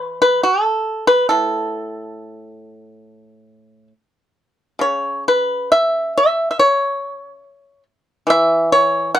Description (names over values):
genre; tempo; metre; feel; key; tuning
chinese traditional, Chinese solo plucked strings; 67-74 BPM; 4/4; rubato; A gong mode; A4 = 440 Hz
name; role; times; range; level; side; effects
pipa; solo; 0.0-9.2 s; A2 to F#5; -15 LUFS; equal; none
room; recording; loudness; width
light reverb; dark, warm production; -14 LUFS; side -11 dB against mid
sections
0.0-9.2 A section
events
none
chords
none